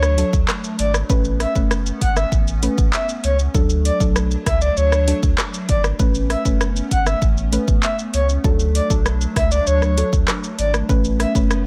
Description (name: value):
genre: dancehall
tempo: 98 BPM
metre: 4/4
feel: straight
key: A major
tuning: A4 = 440 Hz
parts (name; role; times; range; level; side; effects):
- breathy flute-like synth lead; melody; 0.0-11.3 s; C#5 to F#5; -25 LUFS; equal; chorus, digital delay
- hollow soft pad; sustained chords; 0.0-11.7 s; F#3 to D4; -31 LUFS; equal; ensemble chorus, sidechain pumping
- warm sub bass; bass; 0.0-11.7 s; F#1 to D2; -22 LUFS; equal; none
- afro-pop drum kit; drums; 0.0-11.6 s; handclaps, hi-hat, kick drum, rim click, shaker; -22 LUFS; equal; none
- downlifter; sound effects; 0.0-1.1 s; none; barely audible; none; none
- soft round pluck; accompaniment; 0.2-11.5 s; F#3 to B4; -27 LUFS; equal; chorus
room: little or no reverb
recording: none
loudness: -18 LUFS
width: mono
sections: 0.0-11.7 A section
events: none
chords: 0.0 D; 1.1 Aadd9; 3.5 D; 6.0 Aadd9; 8.4 D; 10.9 Aadd9